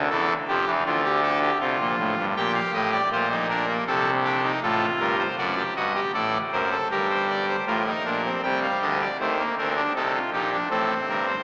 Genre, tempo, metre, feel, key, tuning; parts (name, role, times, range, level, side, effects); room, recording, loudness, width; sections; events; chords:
classical, baroque-style 3-part fugue for pipe organ; 79 BPM; 4/4; straight; G minor; A4 = 440 Hz
pipe organ, trumpet; solo; 0.0-11.4 s; F#1 to G5; -21 LUFS; equal
wet cathedral reverb, RT60 5.5 s; small speaker sound; -21 LUFS; side -34 dB against mid
0.0-8.4 A section; 8.4-11.4 B section
0.0 A7(no3); 0.9 Dm; 2.4 Gm; 3.9 Am7/C; 5.4 D7/F#; 6.9 Gm; 8.4 Cm; 9.9 Adim